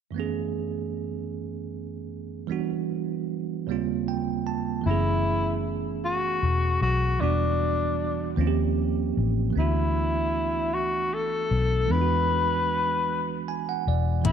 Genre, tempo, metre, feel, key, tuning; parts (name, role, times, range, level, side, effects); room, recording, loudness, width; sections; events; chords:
slow six-eight R&B; 51 BPM (dotted quarters); 6/8; straight; F# minor; A4 = 441 Hz
bell-like tine electric piano; accompaniment; 0.1-14.3 s; D#2 to A5; -28 LUFS; right 9 dB; medium stereo tremolo
breathy tenor saxophone; melody; 4.9-14.3 s; D4 to B4; -26 LUFS; left 3 dB
vintage muted fingered electric bass; bass; 4.9-14.3 s; E1 to E2; -26 LUFS; left 2 dB
smooth R&B drum kit; drums; 14.2-14.3 s; hi-hat, kick drum; -23 LUFS; left 7 dB
light reverb; 1960s-style stereo with parts hard left and right; -24 LUFS; side -8 dB against mid
0.1-4.8 A section; 4.8-14.3 B section
tine electric piano fill 3.7-4.8, 13.1-14.3
0.1 F#m11; 2.5 Em9; 3.7 D#13; 4.8 F#m11; 7.2 Em9; 8.4 D#13; 9.5 D69; 11.9 E9